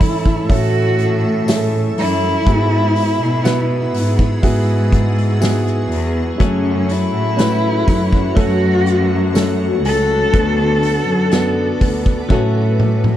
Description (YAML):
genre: pop ballad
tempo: 61 BPM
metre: 4/4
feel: straight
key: A major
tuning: A4 = 440 Hz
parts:
  - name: dark cello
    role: melody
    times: 0.0-12.8 s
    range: C#4 to A4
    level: -20 LUFS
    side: equal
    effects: slapback echo
  - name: clear baby grand piano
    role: accompaniment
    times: 0.0-13.2 s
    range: G#2 to B4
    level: -21 LUFS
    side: right 3 dB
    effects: none
  - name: granular cloud pad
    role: sustained chords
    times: 0.2-13.2 s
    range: F#4 to E6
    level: -27 LUFS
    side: left 3 dB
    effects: built-in reverb
  - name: warm studio cello section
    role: bass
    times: 0.0-13.2 s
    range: C#2 to B2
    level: -18 LUFS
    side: equal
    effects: none
  - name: loose indie drum kit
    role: drums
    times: 0.0-13.2 s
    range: hi-hat, kick drum, snare drum, toms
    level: -18 LUFS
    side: equal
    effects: none
  - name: tambourine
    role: percussion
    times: 1.5-11.6 s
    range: none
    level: -36 LUFS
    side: left 9 dB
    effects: none
  - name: direct-recorded clean electric guitar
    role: arpeggios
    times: 6.4-13.2 s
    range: F#2 to A4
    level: -26 LUFS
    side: left 12 dB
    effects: spring reverb
room: little or no reverb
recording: none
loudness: -13 LUFS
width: side -12 dB against mid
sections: 0.0-13.2 A section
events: drum fill 12.3-13.2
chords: 0.0 A; 2.5 Eadd9/G#; 6.4 F#m; 10.3 D6; 12.3 A6